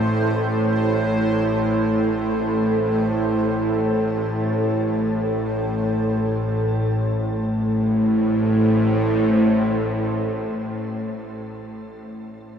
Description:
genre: dark ambient drone.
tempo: free time.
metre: none.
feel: none.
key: A minor.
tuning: A4 = 441 Hz.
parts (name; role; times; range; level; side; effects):
deep dark ambient pad; sustained chords; 0.0-11.8 s; A3 to C5; -21 LUFS; equal; chorus, built-in reverb, shimmer reverb.
bowed-like drone; drone; 0.0-11.3 s; A1 to A2; -23 LUFS; equal; built-in reverb.
bubbling stepped-filter texture; texture; 0.0-6.9 s; C5; -34 LUFS; right 2 dB; chorus, built-in reverb, shimmer reverb.
room: wet huge ambient reverb, RT60 8.2 s.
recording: none.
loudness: -19 LUFS.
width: side -7 dB against mid.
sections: 0.0-6.9 A section; 6.9-11.3 B section.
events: fade-out on synth texture 0.0-6.9.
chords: 0.0 Am.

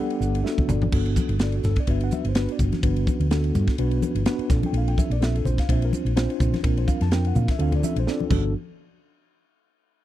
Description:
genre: electric jazz fusion.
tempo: 126 BPM.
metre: 4/4.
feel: swing 55% on 16ths.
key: G major.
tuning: A4 = 440 Hz.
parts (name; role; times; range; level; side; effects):
nylon-string guitar; melody; 0.0-0.7 s; G4; -46 LUFS; right 2 dB; none.
breathy trombone; second line; 0.0-0.7 s; G3; -34 LUFS; right 8 dB; none.
mellow tine electric piano; accompaniment; 0.0-8.5 s; B3 to A5; -27 LUFS; equal; medium stereo tremolo.
crisp fusion drum kit; drums; 0.1-8.4 s; crash cymbal, hi-hat, kick drum, ride cymbal, snare drum, toms; -25 LUFS; equal; none.
hollow-body short-scale fingered electric bass; bass; 0.2-8.5 s; G1 to Bb2; -23 LUFS; equal; none.
congas; percussion; 0.6-8.5 s; none; -29 LUFS; left 3 dB; none.
room: small room ambience.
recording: dry, close 1970s-style studio recording.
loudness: -20 LUFS.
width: side -13 dB against mid.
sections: 0.9-8.5 A section; 8.5-10.0 B section.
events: tine electric piano fill 0.0-0.9; drum fill 0.5-0.9, 8.1-8.5.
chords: 0.0 Gmaj9; 4.5 Bbmaj9; 8.3 Gmaj9; 8.5 N.C..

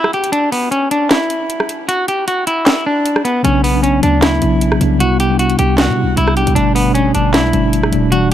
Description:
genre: hip hop, trap.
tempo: 154 BPM.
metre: 4/4.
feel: half-time.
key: unclear.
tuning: A4 = 438 Hz.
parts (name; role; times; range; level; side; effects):
semi-hollow electric guitar; melody; 0.0-8.3 s; B3 to G4; -16 LUFS; equal; low-pass filter, ping-pong delay.
trap drum kit; drums; 0.0-8.3 s; handclaps, hi-hat, rim click, snare drum; -18 LUFS; equal; none.
mellow tine electric piano; accompaniment; 3.4-8.3 s; B2 to E4; -15 LUFS; left 1 dB; fast stereo tremolo, low-pass filter.
hard-hitting 808-style bass; bass; 3.4-8.3 s; E1 to C3; -17 LUFS; equal; none.
room: light reverb, digital ambience.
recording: none.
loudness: -12 LUFS.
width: side -11 dB against mid.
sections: 0.0-8.3 A section.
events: break 0.0-3.4.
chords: 0.0 N.C.; 3.4 Bmadd9; 5.0 Cmaj7; 6.6 Gadd9.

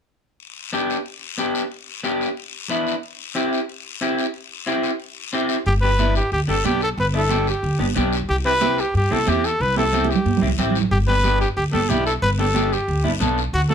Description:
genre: latin, cumbia.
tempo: 183 BPM.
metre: 4/4.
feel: straight.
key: G major.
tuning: A4 = 440 Hz.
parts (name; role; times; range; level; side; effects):
guiro; percussion; 0.4-13.7 s; none; -31 LUFS; left 8 dB; none.
electric guitar at the edge of break-up; accompaniment; 0.7-13.7 s; A3 to A4; -23 LUFS; left 1 dB; none.
clear trumpet; melody; 5.7-13.7 s; F#4 to B4; -21 LUFS; equal; none.
upright bass; bass; 5.7-13.7 s; G1 to G2; -22 LUFS; equal; none.
congas; percussion; 5.7-13.7 s; none; -25 LUFS; right 8 dB; none.
room: light reverb.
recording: none.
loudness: -18 LUFS.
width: side -8 dB against mid.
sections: 0.4-5.7 A section; 5.7-13.7 B section.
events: drum fill 9.9-10.9.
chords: 0.4 G; 3.0 C; 5.7 G; 8.3 C; 10.9 G.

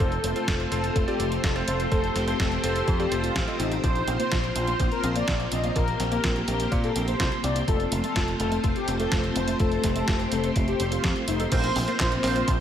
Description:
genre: italo disco.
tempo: 125 BPM.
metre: 4/4.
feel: straight.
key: unclear.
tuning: A4 = 440 Hz.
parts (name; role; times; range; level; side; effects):
mellow synth brass; melody; 0.0-12.5 s; Eb4 to Eb5; -29 LUFS; left 2 dB; chorus, analog delay.
string machine, full ensemble; sustained chords; 0.0-12.6 s; A3 to C5; -29 LUFS; equal; ensemble chorus.
bright electric grand piano; stabs; 0.0-3.6, 11.5-12.5 s; C4 to Eb5; -33 LUFS; right 2 dB; none.
picked electric bass; bass; 0.0-12.6 s; F1 to Bb2; -29 LUFS; equal; tube saturation.
detuned 8-bit digital drum machine; drums; 0.0-12.6 s; crash cymbal, handclaps, hi-hat, snare drum; -32 LUFS; right 1 dB; none.
electronic kick drum; drums; 0.0-12.6 s; none; -27 LUFS; equal; none.
warbly dusty pluck; arpeggios; 3.8-12.6 s; A3 to A4; -35 LUFS; left 1 dB; chorus, analog delay.
room: wet lush hall reverb, RT60 1.9 s.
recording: dreamy mix soaked in reverb.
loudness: -22 LUFS.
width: side -9 dB against mid.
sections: 0.0-11.5 A section; 11.5-12.6 B section.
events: none.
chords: 0.0 F; 3.8 Bbsus2; 7.7 F; 11.5 Bbsus2.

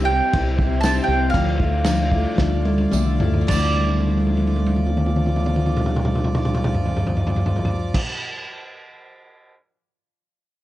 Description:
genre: folk rock and heartland rock.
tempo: 105-122 BPM.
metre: 4/4.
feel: straight.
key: D minor.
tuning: A4 = 440 Hz.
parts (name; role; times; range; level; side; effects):
mandolin; melody; 0.0-8.0 s; D5 to A5; -24 LUFS; right 4 dB; none.
picked steel-string acoustic guitar; accompaniment; 0.0-8.1 s; C3 to G4; -26 LUFS; left 6 dB; none.
hand-pumped harmonium; sustained chords; 0.0-8.0 s; F3 to D5; -31 LUFS; right 1 dB; none.
deep dub fingered electric bass; bass; 0.0-8.0 s; C2 to D2; -22 LUFS; equal; none.
vintage drum kit; drums; 0.3-9.5 s; crash cymbal, kick drum, snare drum, toms; -22 LUFS; equal; none.
tambourine; percussion; 0.8-8.0 s; none; -37 LUFS; right 14 dB; none.
room: little or no reverb.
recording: dark, warm production.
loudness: -18 LUFS.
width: side -14 dB against mid.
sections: 0.0-3.5 A section; 3.5-8.1 B section.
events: slowing down 0.0-3.5; drum fill 2.4-3.5, 3.8-7.9.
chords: 0.0 C; 1.3 Dmadd9.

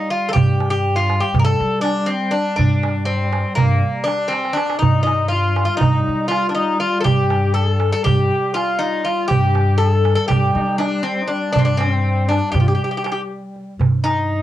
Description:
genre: Turkish makam ensemble.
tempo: 241 BPM (eighths).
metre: 9/8.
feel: straight.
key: unclear.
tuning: A4 = 440 Hz.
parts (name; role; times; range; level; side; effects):
Greek bouzouki; melody; 0.0-14.4 s; Bb3 to Bb4; -20 LUFS; left 1 dB; cassette tape.
mellow duduk; drone; 0.0-13.8 s; G3; -28 LUFS; equal; stereo widening, cassette tape.
upright bass; bass; 0.4-14.4 s; G2 to G3; -20 LUFS; left 1 dB; transformer saturation.
darbuka; percussion; 0.4-14.4 s; none; -20 LUFS; right 4 dB; none.
warm kamancheh; second line; 4.8-13.3 s; C4 to A4; -26 LUFS; left 7 dB; cassette tape.
room: wet booth ambience, RT60 0.2 s.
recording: home recording on cassette.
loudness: -15 LUFS.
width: side -13 dB against mid.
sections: 0.0-13.8 A section.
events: drum fill 4.3-4.8.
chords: none.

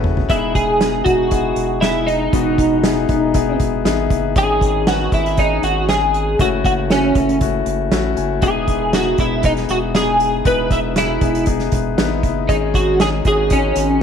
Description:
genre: piano-driven pop.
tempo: 118 BPM.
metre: 4/4.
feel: straight.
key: E major.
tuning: A4 = 440 Hz.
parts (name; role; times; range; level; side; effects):
clear grand piano; accompaniment; 0.0-14.0 s; G#2 to G#5; -20 LUFS; left 12 dB; none.
round analog bass; bass; 0.0-14.0 s; E1 to A1; -23 LUFS; right 1 dB; none.
unplugged drum kit; drums; 0.0-13.9 s; hi-hat, kick drum, snare drum, toms; -20 LUFS; right 2 dB; none.
twelve-string electric guitar; melody; 0.3-14.0 s; C#4 to B4; -18 LUFS; right 2 dB; ensemble chorus, slapback echo.
room: light reverb, small room ambience.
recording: 1960s-style stereo.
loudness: -14 LUFS.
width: side -7 dB against mid.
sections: 0.3-14.0 A section.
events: drum fill 0.0; grand piano fill 7.7-8.4.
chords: 0.3 Emaj7; 4.4 G#sus4; 6.4 F#m7; 8.4 Emaj7; 12.5 G#sus4.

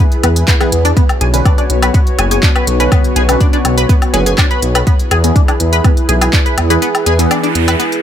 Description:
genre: melodic techno.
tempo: 123 BPM.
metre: 4/4.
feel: straight.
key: B dorian.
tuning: A4 = 440 Hz.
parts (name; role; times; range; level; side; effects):
dark analog pad; sustained chords; 0.0-8.0 s; B3 to C#5; -19 LUFS; left 1 dB; chorus, sidechain pumping.
tight sequenced synth; arpeggios; 0.0-7.8 s; B3 to B5; -18 LUFS; left 1 dB; chorus, sidechain pumping, dub echo.
filtered dub chord stab; stabs; 0.0-8.0 s; D3 to B4; -20 LUFS; right 1 dB; phaser, cassette tape, sidechain pumping, dub echo.
deep house drum kit; drums; 0.1-8.0 s; handclaps, hi-hat, woodblock; -18 LUFS; left 2 dB; none.
swelling detuned saw bass; bass; 0.2-7.8 s; F#1 to E2; -14 LUFS; equal; tube saturation, sidechain pumping.
electronic kick drum; drums; 0.5-6.4 s; none; -12 LUFS; equal; none.
noise sweep; sound effects; 7.2-8.0 s; none; -22 LUFS; right 3 dB; none.
room: digital ambience.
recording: none.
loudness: -9 LUFS.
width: side -10 dB against mid.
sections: 0.0-8.0 A section.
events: kick drops out 6.8-8.0; noise sweep 7.2-8.0.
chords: 0.0 E; 1.0 Bmadd9; 4.9 E.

